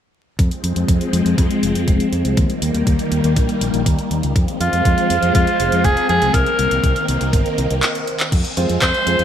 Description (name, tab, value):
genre	italo disco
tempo	121 BPM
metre	4/4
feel	straight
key	F minor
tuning	A4 = 440 Hz
part	phased string machine	sustained chords	0.4-9.2 s	Eb3 to C4	-20 LUFS	left 1 dB	ensemble chorus, phaser
part	fingered electric bass	bass	0.4-9.2 s	F1 to F2	-21 LUFS	equal	low-pass filter
part	electronic kick drum	drums	0.4-8.9 s	none	-18 LUFS	equal	none
part	house drum kit	drums	0.4-9.2 s	crash cymbal, handclaps, hi-hat	-24 LUFS	equal	none
part	raspy alto saxophone	melody	4.6-9.2 s	F4 to C5	-18 LUFS	right 1 dB	ping-pong delay
part	warm concert grand piano	stabs	8.6-9.2 s	Ab3 to C5	-22 LUFS	right 2 dB	wide subtle chorus, low-pass filter
room	moderate plate reverb, RT60 2.9 s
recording	bright 1980s-style digital production, vinyl crackle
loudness	-15 LUFS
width	side -9 dB against mid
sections	0.4-8.3 A section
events	drum fill 7.8-8.3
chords	0.4 Fm; 2.4 Eb; 4.4 Fm; 6.3 Cm7; 8.3 Fm